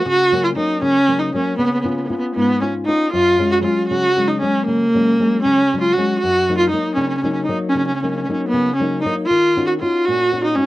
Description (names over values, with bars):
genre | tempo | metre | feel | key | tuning
italian folk, Italian serenade | 78 BPM (dotted quarters) | 6/8 | straight | F# major | A4 = 438 Hz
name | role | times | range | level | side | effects
rich viola | melody | 0.0-10.7 s | A#3 to F#4 | -16 LUFS | right 1 dB | none
flamenco guitar | accompaniment | 0.1-10.7 s | F#2 to F#4 | -22 LUFS | left 2 dB | none
room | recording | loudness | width
light reverb | dry, close 1970s-style studio recording | -15 LUFS | side -16 dB against mid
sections
0.0-10.7 A section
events
none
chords
0.1 F#/C#; 1.6 C#7; 3.1 F#sus2; 6.2 F#6; 9.3 D#m7